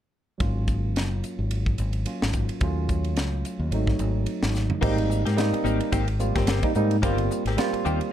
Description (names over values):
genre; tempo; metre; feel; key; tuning
electric jazz fusion; 109 BPM; 4/4; swing 56% on 16ths; Ab mixolydian, Ab major from 4.8 s; A4 = 441 Hz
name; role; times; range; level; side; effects
barky tine electric piano; accompaniment; 0.4-8.1 s; Gb3 to F4; -28 LUFS; right 2 dB; wide subtle chorus
fingered electric bass; bass; 0.4-8.0 s; Gb1 to Ab2; -25 LUFS; equal; none
crisp fusion drum kit; drums; 0.4-8.1 s; crash cymbal, hi-hat, kick drum, ride cymbal, snare drum, toms; -28 LUFS; equal; none
direct-recorded clean electric guitar; stabs; 4.8-8.0 s; Eb3 to G4; -31 LUFS; left 4 dB; analog chorus, slapback echo
room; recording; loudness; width
light reverb; dark, warm production; -22 LUFS; side -10 dB against mid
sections
0.4-4.8 A section; 4.8-8.1 B section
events
drum fill 4.5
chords
0.4 Ab13sus4; 2.6 Ebm7b5; 3.7 Ab7b9; 4.8 Abmaj9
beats
| 0.40 0.96 1.51 2.06 | 2.62 3.17 3.72 4.27 | 4.82 5.37 5.92 6.47 | 7.02 7.57 8.12